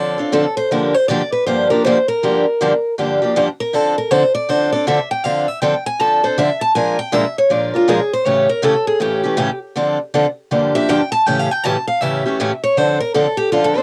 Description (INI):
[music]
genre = jazz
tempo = 159 BPM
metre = 4/4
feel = swing 63% on 8ths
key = D minor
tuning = A4 = 439 Hz
[part]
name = picked steel-string acoustic guitar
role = melody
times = 0.0-13.8 s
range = F4 to A5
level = -19 LUFS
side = equal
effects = cassette tape
[part]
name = picked steel-string acoustic guitar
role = accompaniment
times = 0.0-13.8 s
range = G2 to Bb4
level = -19 LUFS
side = equal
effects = cassette tape
[sound]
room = light reverb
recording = home recording on cassette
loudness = -17 LUFS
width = mono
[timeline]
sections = 0.0-12.8 A section; 12.8-13.8 A section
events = steel-string acoustic guitar solo 0.0-13.8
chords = 0.0 Dm7; 0.7 Gm7; 3.7 Dm7; 6.7 Bb7; 8.3 A7; 9.8 Dm7; 10.5 Gm7; 11.3 A7; 12.8 Dm7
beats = 0.34 | 0.71 1.09 1.47 1.84 | 2.22 2.60 2.98 3.35 | 3.73 4.11 4.49 4.86 | 5.24 5.62 5.99 6.37 | 6.75 7.12 7.50 7.88 | 8.25 8.63 9.00 9.38 | 9.76 10.13 10.51 10.88 | 11.26 11.63 12.01 12.39 | 12.76 13.14 13.52